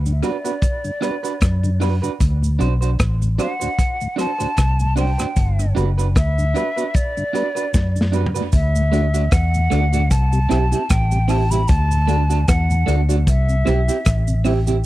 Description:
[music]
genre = roots reggae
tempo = 76 BPM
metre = 4/4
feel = swing 56% on 16ths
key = D mixolydian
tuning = A4 = 436 Hz
[part]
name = vintage muted fingered electric bass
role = bass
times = 0.0-14.8 s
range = F#1 to F#2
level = -18 LUFS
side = equal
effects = none
[part]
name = mellow tonewheel organ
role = accompaniment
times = 0.1-14.7 s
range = D2 to G4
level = -25 LUFS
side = left 2 dB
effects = slow rotary speaker
[part]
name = cabasa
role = percussion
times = 0.1-14.8 s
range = none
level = -35 LUFS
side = right 9 dB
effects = none
[part]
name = breathy mellow concert flute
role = melody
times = 0.2-14.4 s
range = D5 to B5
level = -25 LUFS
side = left 1 dB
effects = dub echo
[part]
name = electric guitar at the edge of break-up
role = accompaniment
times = 0.2-14.8 s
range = A3 to C5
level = -25 LUFS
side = right 7 dB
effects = warbly pitch drift, dub echo
[part]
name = crunchy breakbeat drum kit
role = drums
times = 0.2-14.8 s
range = hi-hat, kick drum, rim click, snare drum, toms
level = -19 LUFS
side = equal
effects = tape echo
[sound]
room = little or no reverb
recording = dry, close 1970s-style studio recording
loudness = -16 LUFS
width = side -16 dB against mid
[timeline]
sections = 0.0-8.5 A section; 8.5-14.9 B section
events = drum fill 7.7-8.5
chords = 0.0 Gmaj7; 2.2 D7; 5.4 Gmaj7; 8.5 D; 10.1 C; 11.7 D; 13.3 C

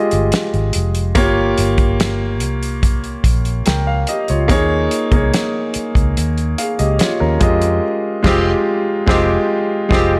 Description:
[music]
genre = lush 1970s-style soul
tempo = 72 BPM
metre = 4/4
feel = straight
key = F minor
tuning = A4 = 441 Hz
[part]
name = warm concert grand piano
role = accompaniment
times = 0.0-10.2 s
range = Ab3 to G5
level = -20 LUFS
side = equal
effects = none
[part]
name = vintage muted fingered electric bass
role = bass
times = 0.1-10.2 s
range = F1 to F2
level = -21 LUFS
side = equal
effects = none
[part]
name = warm soul drum kit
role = drums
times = 0.1-10.1 s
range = crash cymbal, hi-hat, kick drum, snare drum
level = -20 LUFS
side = equal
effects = none
[part]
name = warm horn section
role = stabs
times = 8.2-10.1 s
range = Eb3 to G4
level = -25 LUFS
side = equal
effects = slapback echo
[sound]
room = light reverb, small room ambience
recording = none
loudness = -16 LUFS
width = mono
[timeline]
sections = 0.0-10.2 A section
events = band accent 7.8-10.2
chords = 0.0 Fm9; 1.2 Gm7b5; 4.5 Eb7sus4; 7.4 Fm9

